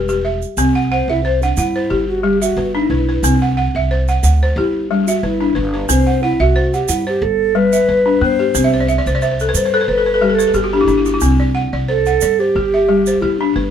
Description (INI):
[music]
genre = west african traditional, West African string and xylophone music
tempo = 90 BPM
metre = 4/4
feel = swing 54% on 16ths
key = C lydian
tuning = A4 = 439 Hz
[part]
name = bright reedy round clay ocarina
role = melody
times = 0.0-13.7 s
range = D4 to C5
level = -17 LUFS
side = right 1 dB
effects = none
[part]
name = balafon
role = arpeggios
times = 0.0-13.7 s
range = G3 to F#5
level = -17 LUFS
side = left 1 dB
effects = none
[part]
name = upright bass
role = bass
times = 0.0-13.7 s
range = E1 to G2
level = -19 LUFS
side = equal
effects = none
[part]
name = egg shaker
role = percussion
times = 0.1-13.2 s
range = none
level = -25 LUFS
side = right 8 dB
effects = none
[sound]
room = light reverb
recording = band playing live in one room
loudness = -13 LUFS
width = side -8 dB against mid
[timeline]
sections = 0.6-11.2 A section; 11.2-13.7 B section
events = ocarina solo 0.6-11.2; balafon fill 8.6-11.2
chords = 0.0 G; 0.6 C; 1.9 G; 3.2 C; 4.6 G; 5.9 C; 7.2 G; 8.6 C5; 9.9 G5; 11.2 C5; 12.6 G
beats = | 0.57 1.24 1.90 2.57 | 3.23 3.90 4.56 5.22 | 5.89 6.55 7.22 7.88 | 8.55 9.22 9.88 10.55 | 11.22 11.88 12.55 13.22